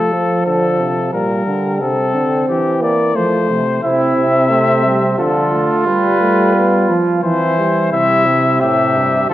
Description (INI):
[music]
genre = classical, imitative canzona for brass ensemble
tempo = 89 BPM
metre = 3/4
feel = straight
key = unclear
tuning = A4 = 440 Hz
[part]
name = mellow trumpet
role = melody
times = 0.0-9.3 s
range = G4 to E5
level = -17 LUFS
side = left 4 dB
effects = none
[part]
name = warm euphonium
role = accompaniment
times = 0.0-9.3 s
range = C3 to C4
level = -18 LUFS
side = right 1 dB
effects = none
[part]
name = warm euphonium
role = bass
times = 0.0-9.3 s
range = F2 to G3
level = -19 LUFS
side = right 1 dB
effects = none
[part]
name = warm flugelhorn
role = second line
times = 3.8-9.3 s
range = C4 to G4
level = -18 LUFS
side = right 3 dB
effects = none
[sound]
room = wet recital hall reverb, RT60 1.8 s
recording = worn, warbling old tape, cassette tape, warbly pitch drift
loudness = -12 LUFS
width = side -14 dB against mid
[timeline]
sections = 0.0-7.9 A section; 7.9-9.3 B section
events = none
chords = 0.0 F; 1.1 Gm/Bb; 1.8 C; 3.2 F; 3.8 C; 5.2 Dm; 5.9 G; 7.2 C/E; 7.9 C